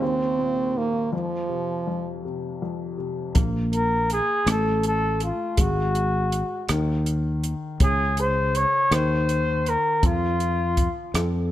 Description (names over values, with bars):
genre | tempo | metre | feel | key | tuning
acoustic folk-pop ballad | 54 BPM (dotted quarters) | 6/8 | straight | unclear | A4 = 436 Hz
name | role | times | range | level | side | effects
warm French horn | second line | 0.0-2.2 s | F3 to C4 | -24 LUFS | right 3 dB | none
warm upright piano | accompaniment | 0.0-11.5 s | Eb2 to A4 | -30 LUFS | left 3 dB | none
sustaining fretless electric bass | bass | 3.4-11.5 s | Ab1 to F2 | -25 LUFS | equal | none
compact cocktail drum kit | drums | 3.4-11.3 s | hi-hat, kick drum, rim click | -23 LUFS | equal | none
breathy flugelhorn | melody | 3.7-11.2 s | F4 to Db5 | -23 LUFS | left 1 dB | none
room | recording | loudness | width
light reverb | none | -21 LUFS | side -13 dB against mid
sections
0.0-3.4 A section; 3.4-11.5 B section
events
French horn solo 0.0-3.4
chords
0.0 Cm7/Eb; 1.1 F5; 3.4 Absus2/Bb; 4.5 F/A; 5.6 Gbsus2/Ab; 6.7 N.C.; 7.8 Abadd11/Db; 8.9 Cm7/Eb; 10.0 F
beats
0.01 | 1.12 2.24 | 3.35 4.47 | 5.58 6.69 | 7.80 8.92 | 10.03 11.15